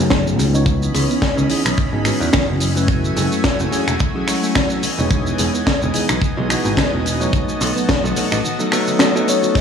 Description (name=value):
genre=nu-disco, nu disco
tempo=108 BPM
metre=4/4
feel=swing 55% on 16ths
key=unclear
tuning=A4 = 440 Hz
part: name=bell-like tine electric piano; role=accompaniment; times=0.0-9.6 s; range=D#3 to C#5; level=-22 LUFS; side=equal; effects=analog delay
part: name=soft round pluck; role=arpeggios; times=0.0-9.6 s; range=D#3 to F#4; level=-26 LUFS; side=left 2 dB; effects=chorus, sidechain pumping, analog delay
part: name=modern bright picked electric bass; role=bass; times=0.0-8.4 s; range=E1 to E2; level=-20 LUFS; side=equal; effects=none
part: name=tight funk drum kit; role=drums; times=0.0-9.6 s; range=crash cymbal, finger snaps, hi-hat, shaker, snare drum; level=-20 LUFS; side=left 1 dB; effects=none
part: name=kick drum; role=drums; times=0.1-9.6 s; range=none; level=-20 LUFS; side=equal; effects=none
part: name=lush unison pad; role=sustained chords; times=0.7-9.6 s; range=E3 to B5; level=-24 LUFS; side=equal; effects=chorus, sidechain pumping
part: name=soft octave-layered synth lead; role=melody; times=9.3-9.6 s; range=C#5 to D#5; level=-18 LUFS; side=left 7 dB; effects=chorus, vintage 12-bit sampler grit
room=light reverb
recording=dry, gritty hardware recording, transformer saturation, cassette tape, small room ambience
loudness=-15 LUFS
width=side -7 dB against mid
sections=0.0-9.6 A section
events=none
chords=0.0 B7; 0.7 C#m9; 2.6 F#m9; 4.8 Emaj7; 7.3 B7